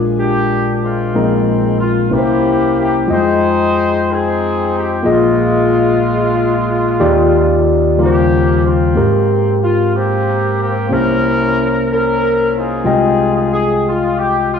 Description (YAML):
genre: gospel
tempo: 61 BPM (dotted quarters)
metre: 6/8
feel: straight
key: unclear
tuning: A4 = 441 Hz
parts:
  - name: barky tine electric piano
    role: accompaniment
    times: 0.0-14.6 s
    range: Bb1 to G5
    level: -13 LUFS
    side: left 2 dB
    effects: cassette tape
  - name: warm horn section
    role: melody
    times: 0.2-14.6 s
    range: Ab3 to C5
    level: -17 LUFS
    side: equal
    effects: cassette tape, tape echo
room: light reverb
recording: home recording on cassette, studio reverb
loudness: -12 LUFS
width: side -6 dB against mid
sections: 0.0-14.6 A section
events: none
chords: 0.0 Bb7; 1.1 Bb9sus4; 2.1 C7b9; 3.1 Fm9; 5.1 Bb7sus4; 7.0 Ebmaj9; 8.0 Eb13; 9.0 Abmaj9; 10.9 C7b9; 12.9 Fm9/C